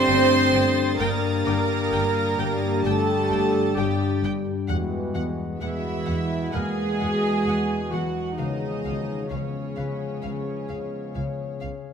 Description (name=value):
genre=cinematic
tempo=65 BPM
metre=4/4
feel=straight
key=unclear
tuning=A4 = 438 Hz
part: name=clear studio violin section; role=second line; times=0.0-11.6 s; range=C#5 to C6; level=-31 LUFS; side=right 2 dB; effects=none
part: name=warm studio viola section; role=accompaniment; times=0.0-11.6 s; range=C#4 to C5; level=-26 LUFS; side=right 1 dB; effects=none
part: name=glass harmonica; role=sustained chords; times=0.0-11.9 s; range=D4 to G5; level=-37 LUFS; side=left 3 dB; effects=none
part: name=mellow trombone section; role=sustained chords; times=0.0-11.7 s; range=D3 to A3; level=-32 LUFS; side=right 4 dB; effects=none
part: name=warm French horn section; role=sustained chords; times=0.0-11.7 s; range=B2 to G#4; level=-33 LUFS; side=left 3 dB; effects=none
part: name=concert harp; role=riff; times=0.0-11.9 s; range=E2 to C#4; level=-28 LUFS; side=left 6 dB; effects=none
part: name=warm chamber cello section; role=bass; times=0.0-11.6 s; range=C#3 to C4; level=-29 LUFS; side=right 2 dB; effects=none
part: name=warm studio violin section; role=texture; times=0.0-4.2 s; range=Eb6 to A6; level=-37 LUFS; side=left 1 dB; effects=none
part: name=warm studio violin section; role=melody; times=0.1-11.7 s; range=E#5 to G5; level=-37 LUFS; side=left 1 dB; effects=none
part: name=dark symphonic double bass section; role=bass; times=0.1-11.7 s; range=G1 to E2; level=-33 LUFS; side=right 4 dB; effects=none
part: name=concert harp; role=texture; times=1.5-11.9 s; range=Bb3 to D6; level=-37 LUFS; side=left 8 dB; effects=none
room=moderate scoring stage reverb, RT60 2.1 s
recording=close, detailed microphones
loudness=-22 LUFS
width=side -7 dB against mid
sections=0.0-11.9 A section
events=none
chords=0.0 Gsus2; 4.7 Eadd9; 8.4 C#7